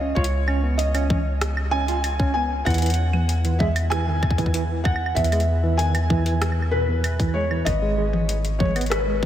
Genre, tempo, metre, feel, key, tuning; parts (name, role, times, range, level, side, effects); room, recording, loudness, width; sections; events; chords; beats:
IDM; 96 BPM; 4/4; straight; A4 = 439 Hz
felt-muted upright piano; melody; 0.0-9.3 s; B4 to G#5; -26 LUFS; equal; wide subtle chorus, shimmer reverb, diffuse ambient delay
tine electric piano; arpeggios; 0.0-9.3 s; E2 to E#4; -28 LUFS; right 2 dB; medium stereo tremolo, shimmer reverb, diffuse ambient delay
rubbery square bass; bass; 0.0-9.3 s; G#1 to E2; -23 LUFS; equal
booming analog drum machine; drums; 0.2-9.0 s; claves, hi-hat, rim click, toms; -29 LUFS; left 1 dB
electronic kick drum; drums; 0.2-9.3 s; -23 LUFS; equal
moderate lush hall reverb, RT60 2.8 s; dreamy mix soaked in reverb; -19 LUFS; side -11 dB against mid
0.0-9.3 A section
0.0 C#sus2; 2.7 E; 7.7 G#m
| 0.17 0.79 1.42 2.04 | 2.67 3.29 3.92 4.54 | 5.17 5.79 6.42 7.04 | 7.67 8.29 8.91